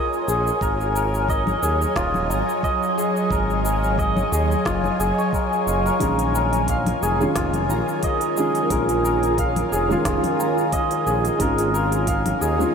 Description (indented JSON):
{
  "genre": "organic downtempo",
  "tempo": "89 BPM",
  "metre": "4/4",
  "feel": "swing 55% on 16ths",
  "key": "Bb minor",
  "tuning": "A4 = 440 Hz",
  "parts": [
    { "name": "ethereal airy pad", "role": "sustained chords", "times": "0.0-12.7 s", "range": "Gb3 to Ab5", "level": "-25 LUFS", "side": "equal", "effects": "ensemble chorus, built-in reverb, sidechain pumping" },
    { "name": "santur", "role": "arpeggios", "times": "0.0-12.7 s", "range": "F4 to Bb5", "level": "-23 LUFS", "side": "equal", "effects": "ping-pong delay" },
    { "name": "organic electronic drum kit", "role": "drums", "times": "0.1-12.7 s", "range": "cabasa, congas, hi-hat, snare drum", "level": "-31 LUFS", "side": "left 1 dB", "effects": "none" },
    { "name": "smooth synth bass", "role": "bass", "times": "0.3-12.6 s", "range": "Eb1 to Eb2", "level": "-25 LUFS", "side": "equal", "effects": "sidechain pumping" },
    { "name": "electronic kick drum", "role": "drums", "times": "0.6-12.2 s", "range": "none", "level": "-27 LUFS", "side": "equal", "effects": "none" },
    { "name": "felt-muted upright piano", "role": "accompaniment", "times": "6.0-12.7 s", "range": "Eb3 to F4", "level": "-25 LUFS", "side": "right 1 dB", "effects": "analog chorus, sidechain pumping, ping-pong delay" }
  ],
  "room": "wet huge ambient reverb, RT60 7.9 s",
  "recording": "dreamy mix soaked in reverb",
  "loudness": "-18 LUFS",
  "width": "side -6 dB against mid",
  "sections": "0.0-12.7 A section",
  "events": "none",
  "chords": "0.0 Bbm7; 0.6 Ab7sus4; 6.0 Bbm7; 11.4 Ab7sus4"
}